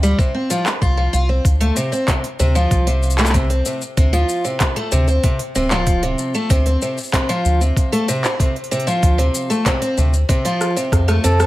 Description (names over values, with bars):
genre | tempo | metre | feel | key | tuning
folktronica | 95 BPM | 4/4 | straight | D minor | A4 = 441 Hz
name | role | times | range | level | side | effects
picked twelve-string acoustic guitar | arpeggios | 0.0-11.5 s | C3 to F4 | -19 LUFS | equal | tape echo
round analog bass | bass | 0.0-11.5 s | D1 to F2 | -16 LUFS | equal | none
minimal click drum kit | drums | 0.0-11.5 s | handclaps, hi-hat, rim click, shaker | -23 LUFS | equal | overdrive
electronic kick drum | drums | 0.2-11.1 s | none | -17 LUFS | equal | none
mellow flugelhorn | melody | 11.2-11.5 s | A4 | -18 LUFS | right 1 dB | none
room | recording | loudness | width
digital ambience | none | -15 LUFS | side -16 dB against mid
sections
0.0-11.5 A section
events
drum fill 10.6-11.5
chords
0.0 G7sus4/D; 1.5 Dm7